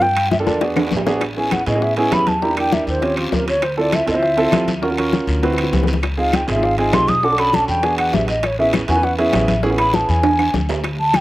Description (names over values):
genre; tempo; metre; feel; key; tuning
Afro-Cuban jazz; 200 BPM; 4/4; straight; unclear; A4 = 440 Hz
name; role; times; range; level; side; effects
bansuri; melody; 0.0-11.2 s; E#4 to D#6; -18 LUFS; equal; slapback echo
clear grand piano; accompaniment; 0.0-10.2 s; Bb3 to C5; -20 LUFS; right 2 dB; none
upright bass; bass; 0.0-11.2 s; G#1 to A2; -23 LUFS; equal; none
bongos; percussion; 0.0-11.2 s; none; -24 LUFS; left 6 dB; none
congas; percussion; 0.0-11.2 s; none; -24 LUFS; left 2 dB; none
guiro; percussion; 0.0-11.2 s; none; -31 LUFS; left 2 dB; none
claves; percussion; 0.2-11.2 s; none; -30 LUFS; left 2 dB; none
timbales; percussion; 0.2-11.2 s; none; -26 LUFS; right 5 dB; slapback echo
room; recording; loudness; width
little or no reverb; recorded outdoors, with no room sound; -15 LUFS; side -16 dB against mid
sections
0.0-1.2 A section; 1.2-10.8 B section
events
drum fill 0.3-1.2, 5.4-6.0, 10.2-10.8; bansuri solo 1.2-11.2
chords
0.0 Gm7; 0.6 E7; 1.2 Amaj9; 2.4 Em7b5; 3.0 D#13; 3.6 Dm7; 4.8 D#m9; 5.4 D13; 6.0 C#maj7; 7.2 Bm7; 7.8 E9; 8.4 Amaj9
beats
| 0.02 0.32 0.62 0.92 | 1.22 1.52 1.82 2.12 | 2.42 2.72 3.02 3.33 | 3.63 3.93 4.23 4.53 | 4.83 5.13 5.43 5.73 | 6.03 6.33 6.63 6.93 | 7.24 7.54 7.84 8.14 | 8.44 8.74 9.04 9.34 | 9.64 9.94 10.24 10.54 | 10.84 11.14